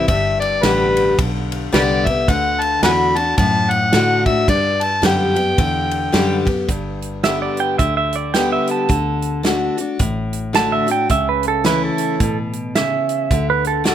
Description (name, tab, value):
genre	honky-tonk and classic country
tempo	109 BPM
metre	4/4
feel	swing 60% on 8ths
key	G major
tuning	A4 = 439 Hz
part	overdriven harmonica	melody	0.0-6.4 s	G4 to B5	-18 LUFS	left 1 dB	none
part	picked steel-string acoustic guitar	accompaniment	0.0-13.9 s	G2 to G4	-20 LUFS	left 3 dB	none
part	fingered electric bass	bass	0.0-13.9 s	G1 to A2	-23 LUFS	right 1 dB	none
part	natural country drum kit	drums	0.1-13.9 s	hi-hat, kick drum, ride cymbal, snare drum	-21 LUFS	right 1 dB	none
part	pedal steel guitar	second line	7.2-13.9 s	A4 to A5	-19 LUFS	right 6 dB	none
room	light reverb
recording	none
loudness	-15 LUFS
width	side -10 dB against mid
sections	0.0-6.7 A section; 6.7-13.9 B section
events	pedal steel guitar solo 6.7-13.9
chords	0.1 G; 2.3 D; 4.5 G; 8.9 D; 11.1 A/C#; 13.3 D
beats	| 0.09 0.63 1.18 1.73 | 2.28 2.83 3.38 3.93 | 4.48 5.03 5.58 6.13 | 6.68 7.24 7.79 8.34 | 8.89 9.44 9.99 10.54 | 11.10 11.65 12.20 12.75 | 13.30 13.85